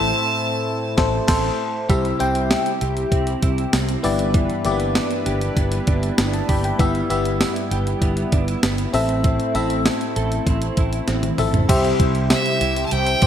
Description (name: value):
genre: 1980s-style pop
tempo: 98 BPM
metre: 4/4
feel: straight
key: unclear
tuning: A4 = 440 Hz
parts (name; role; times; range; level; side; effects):
- clear fiddle; melody; 0.0-1.2, 12.3-13.3 s; E5 to A5; -22 LUFS; right 2 dB; digital delay
- FM electric piano; accompaniment; 0.0-13.3 s; G2 to B5; -23 LUFS; left 3 dB; chorus
- brassy analog pad; sustained chords; 0.0-13.3 s; C3 to B4; -29 LUFS; left 1 dB; chorus, tremolo
- fretless electric bass; bass; 0.0-13.3 s; G1 to C2; -24 LUFS; right 1 dB; none
- clean 12-bit digital drum machine; drums; 1.0-13.3 s; crash cymbal, hi-hat, kick drum, snare drum, tambourine, toms; -21 LUFS; right 1 dB; none
- direct-recorded clean electric guitar; riff; 1.9-13.3 s; E3 to A4; -28 LUFS; right 7 dB; ensemble chorus, digital delay
room: moderate lush hall reverb, RT60 2.0 s, digital ambience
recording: bright 1980s-style digital production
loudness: -18 LUFS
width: side -9 dB against mid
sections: 0.0-1.9 A section; 1.9-11.7 B section; 11.7-13.3 A section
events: band accent 0.0-1.9; drum fill 11.1-11.7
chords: 0.0 Am; 1.9 C; 4.0 G6; 6.8 Em/G; 8.9 Am; 11.7 C